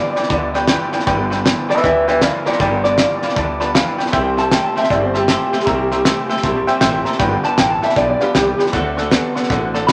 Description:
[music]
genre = rockabilly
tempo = 157 BPM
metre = 4/4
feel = swing 64% on 8ths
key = G mixolydian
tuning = A4 = 440 Hz
[part]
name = electric guitar through a small old amp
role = melody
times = 0.0-9.9 s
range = G4 to B5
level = -20 LUFS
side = equal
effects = spring reverb
[part]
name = picked steel-string acoustic guitar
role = accompaniment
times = 0.0-9.9 s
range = G2 to A4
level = -30 LUFS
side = equal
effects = none
[part]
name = tack piano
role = accompaniment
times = 0.0-9.9 s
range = A4 to B5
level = -24 LUFS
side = equal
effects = none
[part]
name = electric guitar through a small old amp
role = riff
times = 0.0-9.9 s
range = G2 to B3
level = -25 LUFS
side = equal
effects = spring reverb
[part]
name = upright bass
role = bass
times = 0.2-9.9 s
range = G1 to D2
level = -27 LUFS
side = equal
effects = none
[part]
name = cloth-damped thuddy drum kit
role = drums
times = 0.2-9.9 s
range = hi-hat, kick drum, snare drum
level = -21 LUFS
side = equal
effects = none
[sound]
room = moderate studio reverb, RT60 0.7 s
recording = none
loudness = -16 LUFS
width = mono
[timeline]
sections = 0.0-9.9 A section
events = clean electric guitar solo 0.0-9.9; honky-tonk piano fill 3.4-4.1, 6.6-7.2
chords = 0.0 G7; 4.1 C7; 7.2 G7; 8.7 D7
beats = 0.30 0.69 | 1.07 1.46 1.84 2.22 | 2.60 2.99 3.37 3.75 | 4.14 4.52 4.90 5.29 | 5.67 6.05 6.43 6.82 | 7.20 7.58 7.96 8.35 | 8.73 9.11 9.50 9.88

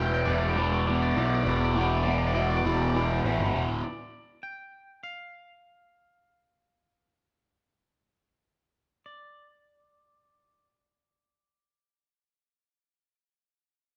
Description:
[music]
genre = post-rock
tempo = 80-101 BPM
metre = 4/4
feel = straight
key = unclear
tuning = A4 = 440 Hz
[part]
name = twangy electric guitar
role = melody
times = 0.0-13.1 s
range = D5 to G5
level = -36 LUFS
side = equal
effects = none
[part]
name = raw garage guitar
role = riff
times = 0.0-3.8 s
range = E2 to E3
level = -29 LUFS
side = equal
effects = overdrive, phaser
[part]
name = fuzz picked electric bass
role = bass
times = 0.0-3.8 s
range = D1 to B1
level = -31 LUFS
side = equal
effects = overdrive
[sound]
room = moderate stone room reverb, RT60 1.2 s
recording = band playing live in one room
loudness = -26 LUFS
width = mono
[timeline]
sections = 0.0-3.8 A section; 3.8-9.1 B section; 9.1-12.1 C section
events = slowing down 3.8-9.1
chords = 0.0 E7(no3); 3.8 N.C.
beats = 0.28 0.87 | 1.46 2.06 2.65 3.25 | 3.84 4.44 5.05 5.66 | 6.30 6.95 7.62 8.32 | 9.06 9.80 10.55 11.30

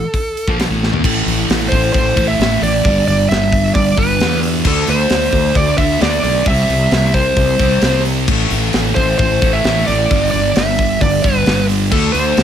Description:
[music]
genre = hard rock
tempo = 132 BPM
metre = 4/4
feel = straight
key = A minor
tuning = A4 = 440 Hz
[part]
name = smooth overdriven lead guitar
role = melody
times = 0.0-12.4 s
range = A4 to E5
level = -17 LUFS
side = right 2 dB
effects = none
[part]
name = sludgy distorted guitar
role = riff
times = 0.0-12.4 s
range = G2 to D4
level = -17 LUFS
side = left 1 dB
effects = overdrive
[part]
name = tight metal drum kit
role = drums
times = 0.1-12.4 s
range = crash cymbal, hi-hat, kick drum, snare drum, toms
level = -18 LUFS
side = equal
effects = none
[part]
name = fretless electric bass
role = bass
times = 0.5-12.4 s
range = G1 to E2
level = -19 LUFS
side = equal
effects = none
[sound]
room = light reverb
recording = none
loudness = -12 LUFS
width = side -9 dB against mid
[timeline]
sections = 0.0-1.0 A section; 1.0-12.4 B section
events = drum fill 0.8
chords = 0.0 A5; 2.8 G; 4.6 D5; 6.5 C; 8.3 A5; 10.1 G; 11.9 D5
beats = 0.14 0.59 | 1.04 1.49 1.94 2.39 | 2.84 3.29 3.75 4.20 | 4.65 5.10 5.55 6.01 | 6.46 6.92 7.37 7.82 | 8.28 8.73 9.19 9.64 | 10.10 10.55 11.01 11.46 | 11.92 12.37

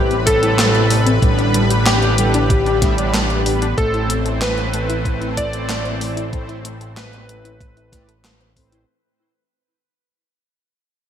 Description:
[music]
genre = synthwave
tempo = 94 BPM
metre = 4/4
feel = straight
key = A minor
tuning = A4 = 440 Hz
[part]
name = clear electric grand piano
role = melody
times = 0.0-8.8 s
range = G4 to D5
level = -22 LUFS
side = left 1 dB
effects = ping-pong delay
[part]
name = soft synth bell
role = second line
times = 0.0-8.8 s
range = G4 to D5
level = -29 LUFS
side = equal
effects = none
[part]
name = analog string pad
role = sustained chords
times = 0.0-8.8 s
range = C3 to B4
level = -24 LUFS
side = left 2 dB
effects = ensemble chorus, sidechain pumping
[part]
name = warbly dusty pluck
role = arpeggios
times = 0.0-8.8 s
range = G3 to C5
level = -27 LUFS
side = left 4 dB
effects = chorus, digital delay
[part]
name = mellow synth brass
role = stabs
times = 0.0-8.8 s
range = A2 to E5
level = -25 LUFS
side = right 2 dB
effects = chorus
[part]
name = fat analog bass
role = bass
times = 0.0-8.9 s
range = A1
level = -20 LUFS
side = equal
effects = sidechain pumping
[part]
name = gated 80s digital drum machine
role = drums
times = 0.1-8.9 s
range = handclaps, hi-hat, snare drum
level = -21 LUFS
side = equal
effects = gated reverb, gated reverb snare
[part]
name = electronic kick drum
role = drums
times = 0.3-8.7 s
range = none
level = -19 LUFS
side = equal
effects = none
[sound]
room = light reverb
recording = none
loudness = -14 LUFS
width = side -9 dB against mid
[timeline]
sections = 0.0-8.9 A section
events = fade-out 2.1-8.9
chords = 0.0 Cmaj7/A; 1.2 G/A; 3.8 Am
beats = 0.59 | 1.23 1.86 2.50 3.14 | 3.78 4.42 5.06 5.69 | 6.33 6.97 7.61 8.25

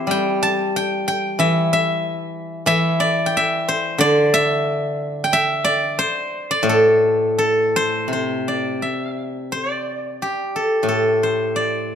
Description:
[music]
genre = chinese traditional, Chinese solo plucked strings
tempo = 81-96 BPM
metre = 4/4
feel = rubato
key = A yu mode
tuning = A4 = 440 Hz
[part]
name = steel-string zither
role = solo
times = 0.0-11.9 s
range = A2 to A5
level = -17 LUFS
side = equal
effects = none
[sound]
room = light reverb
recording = close, detailed microphones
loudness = -17 LUFS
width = side -8 dB against mid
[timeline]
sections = 0.0-8.1 A section; 8.1-11.9 B section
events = none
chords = none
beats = | 0.08 0.74 1.40 2.04 | 2.68 3.33 3.99 4.64 | 5.30 5.96 6.66 7.38 | 8.10 8.80 9.50 10.18 | 10.85 11.52

